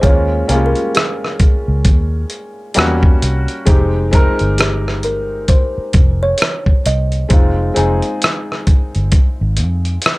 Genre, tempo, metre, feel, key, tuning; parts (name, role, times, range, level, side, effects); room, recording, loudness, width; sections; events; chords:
lo-fi hip hop; 66 BPM; 4/4; swing 61% on 16ths; A4 = 440 Hz
kalimba; melody; 0.0-7.7 s; G4 to Eb5; -21 LUFS; right 1 dB
felt-muted upright piano; accompaniment; 0.0-10.2 s; G3 to Bb4; -20 LUFS; left 1 dB
vintage muted fingered electric bass; bass; 0.0-10.0 s; F1 to F2; -16 LUFS; equal
dusty soul sampler-style drum kit; drums; 0.0-10.2 s; hi-hat, kick drum, rim click; -13 LUFS; equal
little or no reverb; dry, gritty hardware recording; -12 LUFS; side -21 dB against mid
0.0-10.2 A section
0.0 Eb9sus4; 2.8 Edim7; 3.7 Fm9